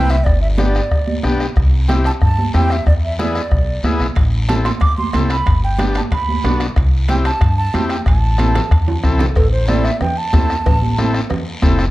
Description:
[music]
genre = latin, cumbia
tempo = 185 BPM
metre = 4/4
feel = straight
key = A minor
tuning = A4 = 442 Hz
[part]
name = breathy mellow silver concert flute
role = melody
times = 0.0-11.1 s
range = A4 to D6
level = -22 LUFS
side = right 2 dB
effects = plate reverb
[part]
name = combo organ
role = accompaniment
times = 0.0-11.9 s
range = B3 to B4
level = -22 LUFS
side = left 2 dB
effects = none
[part]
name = upright bass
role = bass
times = 0.0-11.9 s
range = F1 to G2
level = -17 LUFS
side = equal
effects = none
[part]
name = bombo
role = percussion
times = 0.1-11.9 s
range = none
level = -18 LUFS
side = left 1 dB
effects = none
[part]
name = guiro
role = percussion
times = 0.1-11.9 s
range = none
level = -33 LUFS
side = left 2 dB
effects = none
[part]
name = congas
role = percussion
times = 0.3-11.8 s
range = none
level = -24 LUFS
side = right 4 dB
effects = none
[part]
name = timbales and cowbell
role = percussion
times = 4.2-11.5 s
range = none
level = -29 LUFS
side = right 3 dB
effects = none
[sound]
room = light reverb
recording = dark, warm production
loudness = -13 LUFS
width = side -17 dB against mid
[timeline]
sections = 0.0-9.4 A section; 9.4-11.9 B section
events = drum fill 8.4-9.4; flute solo 9.4-11.9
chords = 0.3 G; 1.6 C; 2.9 E7; 4.2 Am; 5.5 G; 6.8 C; 8.1 Am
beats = | 0.26 0.59 0.91 1.24 | 1.56 1.89 2.21 2.54 | 2.86 3.19 3.51 3.84 | 4.16 4.49 4.81 5.13 | 5.46 5.79 6.11 6.43 | 6.76 7.08 7.41 7.73 | 8.06 8.38 8.71 9.03 | 9.36 9.68 10.01 10.33 | 10.66 10.98 11.30 11.63

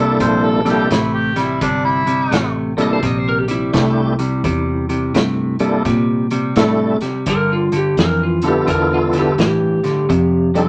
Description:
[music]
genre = electric blues shuffle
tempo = 85 BPM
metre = 4/4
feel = swing 64% on 8ths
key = C mixolydian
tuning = A4 = 439 Hz
[part]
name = mellow harmonica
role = second line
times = 0.0-2.5 s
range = D4 to C5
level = -22 LUFS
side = equal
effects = overdrive
[part]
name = tonewheel organ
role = accompaniment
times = 0.0-10.7 s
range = G3 to A4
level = -19 LUFS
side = equal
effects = slow rotary speaker, overdrive, chorus vibrato
[part]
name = clean electric guitar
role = riff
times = 0.0-10.7 s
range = F2 to A3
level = -22 LUFS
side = equal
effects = none
[part]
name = vintage muted fingered electric bass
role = bass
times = 0.0-10.7 s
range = G1 to Bb2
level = -24 LUFS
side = equal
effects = none
[part]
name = vintage drum kit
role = drums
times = 0.2-10.7 s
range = hi-hat, kick drum, snare drum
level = -24 LUFS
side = equal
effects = none
[part]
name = lightly driven lead guitar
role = melody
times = 2.8-10.7 s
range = E4 to Eb5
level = -23 LUFS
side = equal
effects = none
[sound]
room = moderate studio ambience, RT60 0.5 s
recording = none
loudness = -17 LUFS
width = mono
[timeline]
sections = 0.0-10.7 A section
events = none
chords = 0.0 C13; 7.3 G13; 10.1 F13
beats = 0.20 0.90 | 1.61 2.32 3.02 3.73 | 4.44 5.14 5.85 6.56 | 7.27 7.97 8.68 9.39 | 10.09

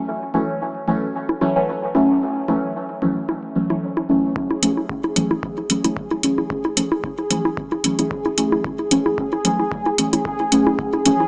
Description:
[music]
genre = dub techno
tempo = 112 BPM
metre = 4/4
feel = swing 55% on 16ths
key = F# minor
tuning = A4 = 438 Hz
[part]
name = deep mellow chord stab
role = stabs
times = 0.0-11.3 s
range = E3 to C#4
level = -20 LUFS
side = equal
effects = chorus, phaser, sidechain pumping, dub echo
[part]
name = congas and bongos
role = percussion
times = 0.3-11.3 s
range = none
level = -23 LUFS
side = equal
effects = sidechain pumping on perc, dub echo
[part]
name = electronic kick drum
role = drums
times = 4.4-10.9 s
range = none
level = -32 LUFS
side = equal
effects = none
[part]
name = bubbling stepped-filter texture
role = texture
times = 4.4-11.3 s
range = G#4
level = -24 LUFS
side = equal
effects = chorus, built-in reverb, sidechain pumping
[part]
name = electronic hi-hat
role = drums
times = 4.6-11.2 s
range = none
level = -20 LUFS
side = equal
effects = none
[sound]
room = light reverb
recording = dry, gritty hardware recording, small speaker sound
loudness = -18 LUFS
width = side -36 dB against mid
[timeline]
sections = 0.0-4.4 A section; 4.4-11.3 B section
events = none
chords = 0.0 F#m7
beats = | 0.07 0.61 1.15 1.68 | 2.22 2.75 3.29 3.82 | 4.36 4.89 5.43 5.97 | 6.50 7.04 7.57 8.11 | 8.64 9.18 9.72 10.25 | 10.79

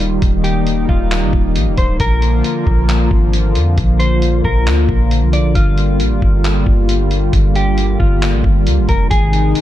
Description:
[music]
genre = hip hop, atmospheric cloud-rap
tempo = 135 BPM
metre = 4/4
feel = half-time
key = unclear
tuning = A4 = 437 Hz
[part]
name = clean electric guitar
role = melody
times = 0.0-9.6 s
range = F4 to D5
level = -23 LUFS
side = equal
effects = low-pass filter, tape echo
[part]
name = warm analog pad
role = sustained chords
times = 0.0-9.6 s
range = C3 to F4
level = -18 LUFS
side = left 1 dB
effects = chorus, tremolo, sidechain pumping
[part]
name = soft 808-style bass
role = bass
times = 0.0-9.5 s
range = D1 to F2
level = -15 LUFS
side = equal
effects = none
[part]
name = lo-fi sampler-style drum kit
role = drums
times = 0.0-9.6 s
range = handclaps, hi-hat, kick drum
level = -17 LUFS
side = equal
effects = none
[sound]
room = little or no reverb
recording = dark, warm production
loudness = -12 LUFS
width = side -13 dB against mid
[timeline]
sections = 0.0-9.6 A section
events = none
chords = 0.0 Ebadd9; 2.0 Bb; 5.6 Gm7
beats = | 0.22 0.67 1.11 1.56 | 2.00 2.44 2.89 3.33 | 3.78 4.22 4.67 5.11 | 5.56 6.00 6.45 6.89 | 7.33 7.78 8.22 8.67 | 9.11 9.56

